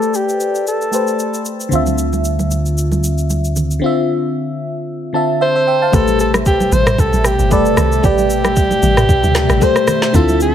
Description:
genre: amapiano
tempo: 114 BPM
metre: 4/4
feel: swing 55% on 16ths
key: A minor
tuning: A4 = 440 Hz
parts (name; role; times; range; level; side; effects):
- clear alto saxophone; melody; 0.0-1.4, 5.4-10.5 s; G4 to C5; -17 LUFS; equal; low-pass filter, ping-pong delay
- FM electric piano; accompaniment; 0.0-10.5 s; D3 to A5; -18 LUFS; left 2 dB; chorus, phaser, low-pass filter
- smooth R&B drum kit; drums; 0.0-10.5 s; kick drum, rim click, shaker, snare drum, toms; -18 LUFS; equal; none
- fingered electric bass; bass; 1.7-3.8 s; D2; -16 LUFS; equal; none
- congas; percussion; 1.7-10.4 s; none; -25 LUFS; right 3 dB; none
- hollow soft pad; sustained chords; 5.9-10.5 s; B2 to E5; -23 LUFS; right 1 dB; ensemble chorus
- deep log drum bass; bass; 5.9-10.5 s; G1 to D2; -18 LUFS; equal; none
room: light reverb, digital ambience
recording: none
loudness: -12 LUFS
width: side -10 dB against mid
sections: 0.0-5.9 A section; 5.9-10.5 B section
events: filter sweep 0.0-5.9; FM electric piano fill 4.9-5.9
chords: 0.0 Am9; 1.7 Dm9; 5.9 Am9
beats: 0.14 0.67 1.20 | 1.72 2.25 2.77 3.30 | 3.83 4.35 4.88 5.41 | 5.93 6.46 6.99 7.51 | 8.04 8.56 9.09 9.62 | 10.14

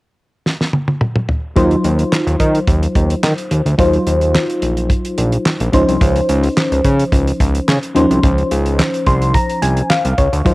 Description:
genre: early-eighties boogie funk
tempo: 108 BPM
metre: 4/4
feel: straight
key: Eb dorian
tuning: A4 = 440 Hz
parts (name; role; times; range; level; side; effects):
- damped 70s drum kit; drums; 0.5-10.5 s; handclaps, hi-hat, kick drum, snare drum, toms; -17 LUFS; equal; cassette tape
- FM electric piano with auto-pan; accompaniment; 1.6-10.5 s; F3 to C6; -17 LUFS; left 1 dB; phaser, cassette tape
- fat analog bass; bass; 1.6-10.5 s; Bb1 to Eb3; -15 LUFS; equal; none
room: light reverb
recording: home recording on cassette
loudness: -13 LUFS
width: side -20 dB against mid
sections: 0.0-1.6 A section; 1.6-10.5 B section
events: drum fill 0.5-1.6; FM electric piano fill 8.8-10.5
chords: 0.0 N.C.; 1.6 Ebm69; 5.7 Dbmaj9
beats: 0.46 1.01 | 1.57 2.12 2.68 3.23 | 3.79 4.34 4.90 5.46 | 6.01 6.57 7.12 7.68 | 8.23 8.79 9.34 9.90 | 10.46

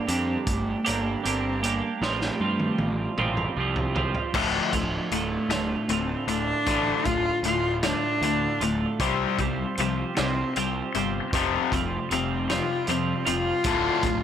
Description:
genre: quiet-loud alternative rock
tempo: 52 BPM (dotted quarters)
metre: 6/8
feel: straight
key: D minor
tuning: A4 = 440 Hz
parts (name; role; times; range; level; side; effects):
- dark cello; melody; 0.0-14.2 s; F3 to F4; -28 LUFS; equal; none
- twelve-string electric guitar; arpeggios; 0.0-13.6 s; D2 to C5; -29 LUFS; right 5 dB; wide subtle chorus
- fuzz picked electric bass; bass; 0.1-14.2 s; D1 to G2; -31 LUFS; equal; overdrive
- loose indie drum kit; drums; 0.1-14.2 s; crash cymbal, hi-hat, kick drum, snare drum, toms; -31 LUFS; equal; none
- overdriven electric guitar; riff; 4.3-14.2 s; D2 to C4; -28 LUFS; left 12 dB; none
- thick fuzz guitar; riff; 13.6-14.2 s; D2 to D3; -30 LUFS; right 12 dB; distortion
room: little or no reverb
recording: none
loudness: -23 LUFS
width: side -9 dB against mid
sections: 0.0-4.3 A section; 4.3-14.2 B section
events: half time 0.0-4.3; drum fill 2.0-4.3; cello solo 4.3-14.2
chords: 0.0 Gm7; 2.0 Fadd9/A; 4.3 Dm; 9.0 Csus4; 11.3 Fsus2; 13.7 Dm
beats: 0.86 | 2.02 3.19 | 4.35 5.51 | 6.68 7.84 | 9.01 10.17 | 11.33 12.49 | 13.66

